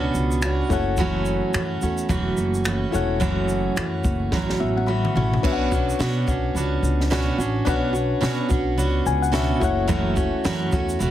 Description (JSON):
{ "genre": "acoustic pop", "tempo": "108 BPM", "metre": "4/4", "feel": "swing 60% on 16ths", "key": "unclear", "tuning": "A4 = 440 Hz", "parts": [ { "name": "picked steel-string acoustic guitar", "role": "accompaniment", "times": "0.0-11.1 s", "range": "F#2 to F#4", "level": "-24 LUFS", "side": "right 3 dB", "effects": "plate reverb" }, { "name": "reed electric piano", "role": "accompaniment", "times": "0.0-11.1 s", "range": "D4 to B5", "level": "-28 LUFS", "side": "left 9 dB", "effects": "plate reverb" }, { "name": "upright bass", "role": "bass", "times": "0.0-11.1 s", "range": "E1 to B2", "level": "-25 LUFS", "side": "equal", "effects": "none" }, { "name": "compact cocktail drum kit", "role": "drums", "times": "0.1-11.1 s", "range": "crash cymbal, finger snaps, kick drum, shaker, snare drum, toms", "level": "-27 LUFS", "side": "equal", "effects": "none" } ], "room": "light reverb", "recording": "heavily compressed radio sound, multiband compression", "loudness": "-20 LUFS", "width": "side -12 dB against mid", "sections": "0.0-5.4 A section; 5.4-11.1 B section", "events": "drum fill 4.3-5.4; reed electric piano fill 4.3-5.4, 8.8-9.9", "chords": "0.0 Bmadd9; 0.7 F#m7; 5.4 Bmadd9; 9.6 F#m7", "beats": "0.43 | 0.99 1.54 2.10 2.66 | 3.21 3.77 4.33 4.88 | 5.44 6.00 6.55 7.11 | 7.66 8.22 8.78 9.33 | 9.89 10.45 11.00" }